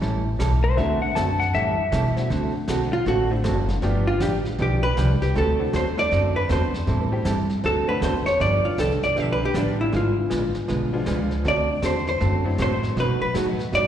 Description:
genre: country, western swing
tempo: 158 BPM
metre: 4/4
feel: swing 64% on 8ths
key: D mixolydian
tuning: A4 = 440 Hz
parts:
  - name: hollow-body jazz guitar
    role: accompaniment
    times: 0.0-13.9 s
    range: B2 to A4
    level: -26 LUFS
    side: right 3 dB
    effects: slapback echo
  - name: upright bass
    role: bass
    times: 0.0-13.9 s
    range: F#1 to B2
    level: -24 LUFS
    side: equal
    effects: none
  - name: vintage brush drum kit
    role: drums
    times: 0.0-13.9 s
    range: brushed snare drum, hi-hat, snare drum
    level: -35 LUFS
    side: left 1 dB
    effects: slapback echo
  - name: clean lap steel guitar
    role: second line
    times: 0.6-2.3 s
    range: C5 to A5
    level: -24 LUFS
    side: left 4 dB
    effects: slapback echo
  - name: honky-tonk upright piano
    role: accompaniment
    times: 0.8-13.6 s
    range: E#3 to A4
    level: -32 LUFS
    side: left 4 dB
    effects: slapback echo
  - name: hollow-body jazz guitar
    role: melody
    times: 2.9-13.9 s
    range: D4 to E5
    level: -24 LUFS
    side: equal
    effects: slapback echo
room: light reverb, small room ambience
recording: live gig heard through the venue's PA, recital hall reverb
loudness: -20 LUFS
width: side -10 dB against mid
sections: 0.0-2.3 A section; 2.3-13.9 A section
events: electric slide guitar solo 0.0-2.3; hollow-body jazz guitar solo 2.3-13.9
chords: 0.0 A9; 0.8 D9; 1.5 A9; 2.3 D9; 3.8 G9; 5.3 D9; 6.9 Am7; 7.6 D9; 8.4 G9; 9.9 G#dim7; 11.4 D9; 13.0 B7

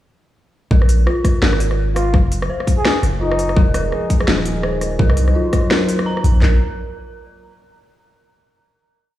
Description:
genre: half-time drum and bass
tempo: 168 BPM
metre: 4/4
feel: swing 59% on 16ths, half-time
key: unclear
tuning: A4 = 440 Hz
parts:
  - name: dark detuned synth bell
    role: arpeggios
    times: 0.7-6.6 s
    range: F4 to Bb5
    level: -24 LUFS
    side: right 2 dB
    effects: chorus, dub echo
  - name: long sustained 808-style bass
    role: bass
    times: 0.7-6.6 s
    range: Eb1 to C2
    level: -16 LUFS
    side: equal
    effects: tube saturation
  - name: drum and bass drum kit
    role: drums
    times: 0.7-6.5 s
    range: handclaps, kick drum, snare drum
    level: -15 LUFS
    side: equal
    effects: none
  - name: drum and bass drum kit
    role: drums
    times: 0.8-6.3 s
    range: hi-hat, rim click, snare drum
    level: -22 LUFS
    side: left 1 dB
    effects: none
  - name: trumpet with bucket mute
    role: melody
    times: 2.0-3.6 s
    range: Eb4 to Ab4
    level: -24 LUFS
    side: left 1 dB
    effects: digital delay
  - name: dark analog pad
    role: sustained chords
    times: 3.6-6.6 s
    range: F3 to Db5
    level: -23 LUFS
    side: left 1 dB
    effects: chorus, sidechain pumping
room: little or no reverb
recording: played on a big sound system in a bare room, large studio reverb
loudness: -14 LUFS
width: side -14 dB against mid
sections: 0.7-6.4 drop; 6.4-7.9 final chord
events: drop 0.7-6.4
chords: 0.7 Bb5; 2.1 Gb; 3.6 Fm7; 5.0 Cdim; 6.4 Bbm

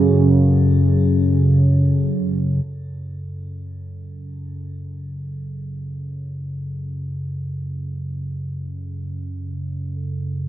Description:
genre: dark ambient drone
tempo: free time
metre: none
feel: none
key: F# minor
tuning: A4 = 440 Hz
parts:
  - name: analog drone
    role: drone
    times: 0.0-10.5 s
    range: F#2 to C#3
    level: -19 LUFS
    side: equal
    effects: chorus
  - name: bronze singing bowl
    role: texture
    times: 0.0-2.7 s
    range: A4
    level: -45 LUFS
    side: left 4 dB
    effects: shimmer reverb
room: little or no reverb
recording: none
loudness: -18 LUFS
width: side -12 dB against mid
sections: 0.0-2.7 A section; 2.7-10.5 B section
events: fade-out on singing bowl 0.0-2.7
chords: 0.0 F#m

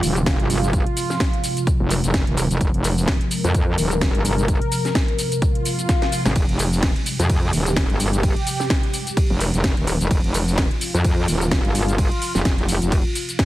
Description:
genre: bass house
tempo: 128 BPM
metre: 4/4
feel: swing 57% on 16ths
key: F minor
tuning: A4 = 440 Hz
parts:
  - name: sweeping resonant pad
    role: sustained chords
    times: 0.0-13.4 s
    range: C3 to Bb4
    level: -26 LUFS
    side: equal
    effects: chorus, sidechain pumping
  - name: metallic wobble bass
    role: bass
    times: 0.0-13.0 s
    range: Eb1 to F2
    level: -20 LUFS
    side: equal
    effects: chorus, tube saturation, sidechain pumping
  - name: house drum kit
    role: drums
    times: 0.0-13.4 s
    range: cabasa, hi-hat, ride cymbal, snare drum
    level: -25 LUFS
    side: equal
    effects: studio reverb
  - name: electronic kick drum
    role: drums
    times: 0.3-13.4 s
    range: none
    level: -20 LUFS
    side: equal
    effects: studio reverb
  - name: swell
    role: sound effects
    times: 5.6-6.4 s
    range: none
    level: -27 LUFS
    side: left 2 dB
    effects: none
room: digital ambience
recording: heavily compressed radio sound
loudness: -18 LUFS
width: side -15 dB against mid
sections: 0.0-13.4 A section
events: swell 5.6-6.4; drum fill 5.9-6.4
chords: 0.0 Fm

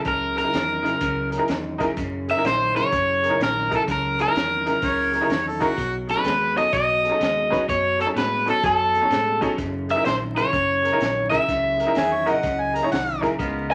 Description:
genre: electric blues shuffle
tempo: 126 BPM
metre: 4/4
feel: swing 66% on 8ths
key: F# mixolydian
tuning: A4 = 440 Hz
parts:
  - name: electric guitar through a small old amp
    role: riff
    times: 0.0-13.7 s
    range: F#2 to G#3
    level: -32 LUFS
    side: equal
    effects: none
  - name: crunchy breakbeat drum kit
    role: drums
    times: 0.0-13.7 s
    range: hi-hat, kick drum, snare drum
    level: -33 LUFS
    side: equal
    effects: none
  - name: crunchy overdriven guitar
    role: melody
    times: 0.1-13.7 s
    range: A4 to E5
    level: -23 LUFS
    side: equal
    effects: none
  - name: vintage muted fingered electric bass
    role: bass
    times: 0.1-13.7 s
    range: F#1 to A2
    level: -37 LUFS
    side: equal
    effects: none
  - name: honky-tonk upright piano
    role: accompaniment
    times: 0.4-13.7 s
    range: C#4 to C#5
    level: -29 LUFS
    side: equal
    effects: none
  - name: clear harmonica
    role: second line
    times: 4.8-5.9, 12.0-13.2 s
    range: F#4 to A#5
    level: -27 LUFS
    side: equal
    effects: overdrive
  - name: warm horn section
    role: stabs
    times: 13.4-13.7 s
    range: B3 to A#4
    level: -31 LUFS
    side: equal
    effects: none
room: moderate large studio reverb, RT60 1.1 s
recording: vinyl crackle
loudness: -22 LUFS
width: mono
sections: 0.0-13.7 A section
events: none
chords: 0.0 F#13; 5.8 B13; 9.6 F#13

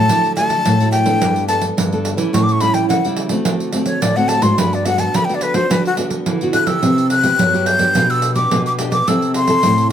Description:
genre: samba and choro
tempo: 107 BPM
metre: 4/4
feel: straight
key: G major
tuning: A4 = 439 Hz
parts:
  - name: breathy jazz flute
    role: melody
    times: 0.0-9.9 s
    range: F#4 to G6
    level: -17 LUFS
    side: left 2 dB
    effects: plate reverb
  - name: nylon-string guitar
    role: accompaniment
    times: 0.0-9.9 s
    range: G2 to A4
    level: -22 LUFS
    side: left 1 dB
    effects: none
  - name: nylon-string guitar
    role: bass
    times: 0.0-9.9 s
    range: G2 to F#3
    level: -20 LUFS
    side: right 1 dB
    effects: none
  - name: pandeiro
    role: percussion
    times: 0.1-9.9 s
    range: none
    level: -21 LUFS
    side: right 3 dB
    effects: none
room: light reverb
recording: none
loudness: -14 LUFS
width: side -9 dB against mid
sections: 0.0-6.8 A section; 6.8-9.9 B section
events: flute solo 0.0-6.8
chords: 0.1 Dadd9; 1.2 Gadd9; 2.3 A7; 3.5 D7; 4.6 Gmaj7; 6.8 Cmaj7; 8.0 G/B; 9.1 Am/C

